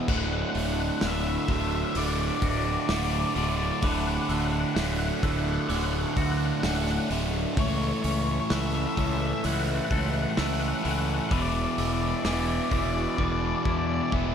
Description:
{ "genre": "post-rock", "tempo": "64 BPM", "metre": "4/4", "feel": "straight", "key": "D lydian", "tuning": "A4 = 440 Hz", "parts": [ { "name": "twangy electric guitar", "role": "arpeggios", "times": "0.0-14.3 s", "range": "D2 to A4", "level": "-39 LUFS", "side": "left 5 dB", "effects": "tape echo" }, { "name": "overdriven electric guitar", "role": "riff", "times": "0.0-14.3 s", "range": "D2 to A3", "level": "-32 LUFS", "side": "left 12 dB", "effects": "phaser" }, { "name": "sludgy distorted guitar", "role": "riff", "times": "0.0-14.3 s", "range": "D2 to A3", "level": "-30 LUFS", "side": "right 11 dB", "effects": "overdrive" }, { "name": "octave-fuzz lead guitar", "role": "melody", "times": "0.1-14.1 s", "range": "C#5 to F#5", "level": "-33 LUFS", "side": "left 3 dB", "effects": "distortion, tape echo" }, { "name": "fuzz fingered electric bass", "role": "bass", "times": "0.1-14.3 s", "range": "D1 to E2", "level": "-30 LUFS", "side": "equal", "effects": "overdrive" }, { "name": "loose indie drum kit", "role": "drums", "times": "0.1-14.3 s", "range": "crash cymbal, hi-hat, kick drum, snare drum", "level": "-32 LUFS", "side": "equal", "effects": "none" }, { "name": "glockenspiel with soft plastic mallets", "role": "arpeggios", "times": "1.0-14.3 s", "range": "D6 to F#6", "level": "-43 LUFS", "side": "right 5 dB", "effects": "none" } ], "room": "light reverb, studio ambience", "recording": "none", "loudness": "-24 LUFS", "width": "side -8 dB against mid", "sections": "0.0-14.3 A section", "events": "drum fill 13.2-14.3", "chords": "0.1 Dmaj7; 7.6 A6/C#; 11.3 E7" }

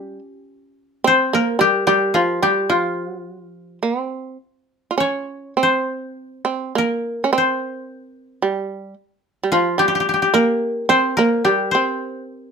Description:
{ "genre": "japanese traditional", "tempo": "54 BPM", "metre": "2/4", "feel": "uneven beats, rubato", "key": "C in sen", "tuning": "A4 = 440 Hz", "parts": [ { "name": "koto", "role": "melody", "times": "0.0-12.5 s", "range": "Db4 to Db5", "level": "-18 LUFS", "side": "left 5 dB", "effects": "none" }, { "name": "shamisen", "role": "second line", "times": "0.0-12.5 s", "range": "F3 to F4", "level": "-20 LUFS", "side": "right 5 dB", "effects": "none" } ], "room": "light reverb", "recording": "none", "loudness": "-17 LUFS", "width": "side -6 dB against mid", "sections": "0.0-12.5 A section", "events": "none", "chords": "none" }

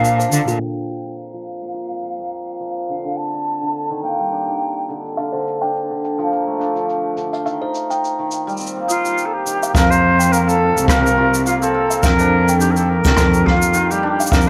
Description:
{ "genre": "folktronica", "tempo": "105 BPM", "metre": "4/4", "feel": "swing 56% on 16ths", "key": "F mixolydian", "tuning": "A4 = 440 Hz", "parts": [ { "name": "silver concert flute", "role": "melody", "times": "0.0-4.9, 8.9-14.5 s", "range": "F4 to A5", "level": "-22 LUFS", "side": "equal", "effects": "vintage 12-bit sampler grit, delay" }, { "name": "music box", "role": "second line", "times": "0.0-0.5, 5.2-14.5 s", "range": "F4 to G5", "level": "-28 LUFS", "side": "equal", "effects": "delay" }, { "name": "hammered dulcimer", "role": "arpeggios", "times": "0.0-14.5 s", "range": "D3 to F5", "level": "-24 LUFS", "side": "equal", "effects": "low-pass filter" }, { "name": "rich cello", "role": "bass", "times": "0.0-0.6, 9.7-14.5 s", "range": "C2 to D3", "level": "-20 LUFS", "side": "equal", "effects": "none" }, { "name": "shaker and rim click", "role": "drums", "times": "0.0-14.5 s", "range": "none", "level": "-28 LUFS", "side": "equal", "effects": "none" }, { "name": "kick drum", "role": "drums", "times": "9.7-14.4 s", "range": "none", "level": "-19 LUFS", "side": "equal", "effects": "none" } ], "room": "light reverb, small room ambience", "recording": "low-pass filter", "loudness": "-18 LUFS", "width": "mono", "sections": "0.6-9.7 A section; 9.7-14.5 B section", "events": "filter sweep on hammered dulcimer 0.6-9.7; filter sweep 0.6-9.7", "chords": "0.0 Bbadd9; 0.6 Fsus4; 2.9 Ebmaj7; 5.2 Bbmaj7; 7.5 Cm7; 9.7 Fsus4; 12.0 Ebmaj7" }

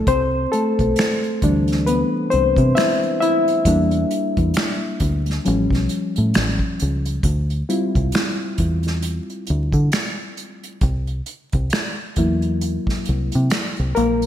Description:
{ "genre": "R&B, neo-soul", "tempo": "67 BPM", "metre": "4/4", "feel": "swing 59% on 16ths", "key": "unclear", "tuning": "A4 = 439 Hz", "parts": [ { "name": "bright reed electric piano", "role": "accompaniment", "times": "0.0-14.3 s", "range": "E3 to E5", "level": "-20 LUFS", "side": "left 2 dB", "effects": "wide subtle chorus" }, { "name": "deep dub fingered electric bass", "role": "bass", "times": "0.1-14.3 s", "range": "A1 to D3", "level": "-20 LUFS", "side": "equal", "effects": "none" }, { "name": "unplugged drum kit", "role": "drums", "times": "0.1-14.3 s", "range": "finger snaps, hi-hat, kick drum, snare drum", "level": "-23 LUFS", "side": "right 1 dB", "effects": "gated reverb" } ], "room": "moderate lush hall reverb, RT60 2.1 s", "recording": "bright 1980s-style digital production, vinyl crackle", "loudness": "-17 LUFS", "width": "side -10 dB against mid", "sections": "0.0-14.3 A section", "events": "reed electric piano solo 0.0-14.3", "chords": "0.1 Cmaj7; 3.7 Em7b5; 5.4 A7b13; 7.2 Dm11; 10.8 C7#11" }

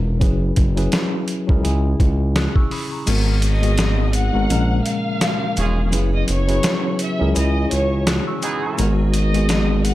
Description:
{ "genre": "hip hop, boom-bap hip-hop", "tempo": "84 BPM", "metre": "4/4", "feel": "swing 57% on 16ths", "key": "G# minor", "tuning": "A4 = 436 Hz", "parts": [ { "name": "tine electric piano", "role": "accompaniment", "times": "0.0-9.9 s", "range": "G#2 to F#6", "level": "-22 LUFS", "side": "left 1 dB", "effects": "overdrive, fast stereo tremolo, cassette tape, high-pass filter, low-pass filter" }, { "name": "smooth gliding synth bass", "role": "bass", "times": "0.0-9.9 s", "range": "E1 to C#2", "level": "-19 LUFS", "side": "equal", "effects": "none" }, { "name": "boom bap sampler-style drum kit", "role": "drums", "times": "0.2-9.9 s", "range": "crash cymbal, hi-hat, kick drum, snare drum", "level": "-21 LUFS", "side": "equal", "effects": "none" }, { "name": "tonewheel organ", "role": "sustained chords", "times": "3.1-9.9 s", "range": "C#3 to F#4", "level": "-32 LUFS", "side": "equal", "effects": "none" }, { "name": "maracas", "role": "percussion", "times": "3.1-9.9 s", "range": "none", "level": "-34 LUFS", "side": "left 6 dB", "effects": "none" }, { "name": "warm studio violin section", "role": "melody", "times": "3.4-9.9 s", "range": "C#5 to F#6", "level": "-26 LUFS", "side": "left 1 dB", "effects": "high-pass filter, low-pass filter" }, { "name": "clear horn section", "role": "stabs", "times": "5.6-8.9 s", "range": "G#3 to G#4", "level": "-28 LUFS", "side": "right 5 dB", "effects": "high-pass filter, low-pass filter, tape echo" } ], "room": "little or no reverb", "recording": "none", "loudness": "-16 LUFS", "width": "side -15 dB against mid", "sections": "0.0-3.1 A section; 3.1-9.9 B section", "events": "kick muted 3.1-9.9", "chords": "0.2 F#7sus4; 1.6 C#m; 3.1 G#m7; 4.5 A#m7; 5.9 F#7sus4; 7.4 C#m; 8.8 G#m7" }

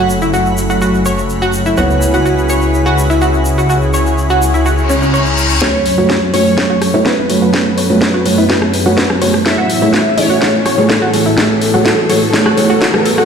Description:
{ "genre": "progressive house", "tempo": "125 BPM", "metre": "4/4", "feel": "straight", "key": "F# minor", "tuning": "A4 = 438 Hz", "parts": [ { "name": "lush unison pad", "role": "sustained chords", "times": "0.0-13.2 s", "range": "F#2 to G#5", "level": "-17 LUFS", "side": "equal", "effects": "chorus, sidechain pumping" }, { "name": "analog pluck", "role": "arpeggios", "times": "0.0-13.2 s", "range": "C#4 to C#5", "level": "-17 LUFS", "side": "equal", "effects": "wide subtle chorus, cassette tape, sidechain pumping, ping-pong delay" }, { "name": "felt-muted upright piano", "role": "stabs", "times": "0.0-13.0 s", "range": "A3 to C#5", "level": "-17 LUFS", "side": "right 2 dB", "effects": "sidechain pumping, ping-pong delay" }, { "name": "dark detuned saw bass", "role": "bass", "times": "0.0-5.6 s", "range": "F#1 to C#2", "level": "-16 LUFS", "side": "left 1 dB", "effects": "sidechain pumping" }, { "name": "twinkling granular texture", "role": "texture", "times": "0.0-5.6 s", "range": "B5", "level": "-31 LUFS", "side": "right 1 dB", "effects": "built-in reverb, sidechain pumping" }, { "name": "tube shaker", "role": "percussion", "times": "0.1-5.6 s", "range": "none", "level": "-27 LUFS", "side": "right 1 dB", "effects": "none" }, { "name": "reverse cymbal and riser", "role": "sound effects", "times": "4.8-13.2 s", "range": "none", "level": "-23 LUFS", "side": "left 2 dB", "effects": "none" }, { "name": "plucky unison lead", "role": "melody", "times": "5.6-13.2 s", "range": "A4 to E5", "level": "-16 LUFS", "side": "left 1 dB", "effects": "wide subtle chorus, sidechain pumping, ping-pong delay" }, { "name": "electronic kick drum", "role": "drums", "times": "5.6-12.9 s", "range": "none", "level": "-22 LUFS", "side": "equal", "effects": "overdrive, high-pass filter on kick" }, { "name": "house drum kit", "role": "drums", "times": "5.6-13.2 s", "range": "hi-hat, rim click, snare drum", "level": "-16 LUFS", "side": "left 1 dB", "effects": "overdrive" } ], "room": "moderate lush hall reverb, RT60 2.0 s", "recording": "played on a big sound system in a bare room, large studio reverb", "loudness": "-10 LUFS", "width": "side -7 dB against mid", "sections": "0.0-5.6 A section; 5.6-13.2 B section", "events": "reverse cymbal 4.8-5.6; build-up 5.6-13.2; drum fill 5.6-13.2; filter sweep on synth pluck 5.6-13.2; filter sweep on analog synth pad 5.6-13.2", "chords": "0.0 F#m; 1.8 C#m7; 5.6 F#m; 9.5 Amaj7" }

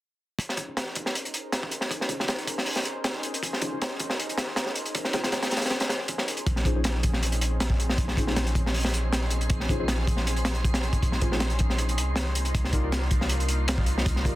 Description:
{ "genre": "drum and bass, jungle", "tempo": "158 BPM", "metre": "4/4", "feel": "straight", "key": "Bb minor", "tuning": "A4 = 441 Hz", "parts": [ { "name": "lush unison pad", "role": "sustained chords", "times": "0.4-14.4 s", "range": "Bb3 to C5", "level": "-36 LUFS", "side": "equal", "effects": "chorus" }, { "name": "crunchy breakbeat drum kit", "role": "drums", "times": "0.4-14.4 s", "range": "hi-hat, kick drum, snare drum", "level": "-26 LUFS", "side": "equal", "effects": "high-pass filter on kick, high-pass filter on hats, high-pass filter on snare, high-pass filter on room" }, { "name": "deep mellow chord stab", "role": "stabs", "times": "0.6-14.3 s", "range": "Db4 to D5", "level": "-37 LUFS", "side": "left 2 dB", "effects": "chorus, dub echo" }, { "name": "long sustained 808-style bass", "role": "bass", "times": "6.5-14.4 s", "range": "Bb1 to C2", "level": "-27 LUFS", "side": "equal", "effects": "none" }, { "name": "wind-like tuned noise texture", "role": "texture", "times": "7.3-14.4 s", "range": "C6", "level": "-39 LUFS", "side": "right 2 dB", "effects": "built-in reverb" } ], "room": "light reverb", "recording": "dense, heavily limited modern master", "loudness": "-24 LUFS", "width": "side -16 dB against mid", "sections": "0.4-6.5 A section; 6.5-14.4 B section", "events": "drop 6.5-14.4", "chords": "0.4 Bbm11; 12.5 Cm11" }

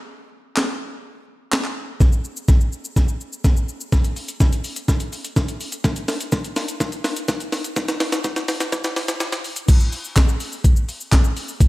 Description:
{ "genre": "pop", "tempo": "125 BPM", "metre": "4/4", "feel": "straight", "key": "none", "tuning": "none", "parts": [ { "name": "breakbeat sampler-style drum kit", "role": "drums", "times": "0.6-11.7 s", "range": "crash cymbal, handclaps, hi-hat, kick drum, shaker, snare drum", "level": "-18 LUFS", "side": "equal", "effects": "none" } ], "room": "light reverb", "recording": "echo-heavy mix, high-pass filter", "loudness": "-18 LUFS", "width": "side -18 dB against mid", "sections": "0.0-2.0 A section; 2.0-9.7 B section; 9.7-11.7 C section", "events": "kick muted 0.1-2.0; build-up 2.0-9.7; drum fill 2.0-9.7; filter sweep 2.0-9.7; drop 9.7-11.7", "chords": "none" }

